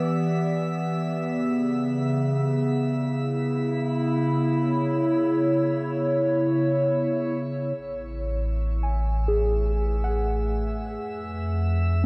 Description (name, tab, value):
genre	ambient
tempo	free time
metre	none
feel	none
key	A major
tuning	A4 = 440 Hz
part	warbly tape-like pad	sustained chords	0.0-12.1 s	A2 to D5	-26 LUFS	equal	chorus, built-in reverb, shimmer reverb
part	drifting glass-harmonics texture	texture	0.0-12.1 s	E5 to E6	-40 LUFS	equal	chorus, built-in reverb, shimmer reverb
part	warm sub bass	bass	7.8-12.1 s	A1 to F2	-28 LUFS	equal	none
part	muted felt-like synth keys	arpeggios	8.8-12.1 s	G#4 to G#5	-31 LUFS	equal	chorus, diffuse ambient delay, shimmer reverb
room	wet huge ambient reverb, RT60 7.0 s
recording	dark, warm production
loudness	-25 LUFS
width	mono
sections	0.0-7.8 A section; 7.8-12.1 B section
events	fade-out on synth texture 0.0-7.8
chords	0.0 Em7; 1.3 C#m7; 7.8 Aadd9; 11.0 F5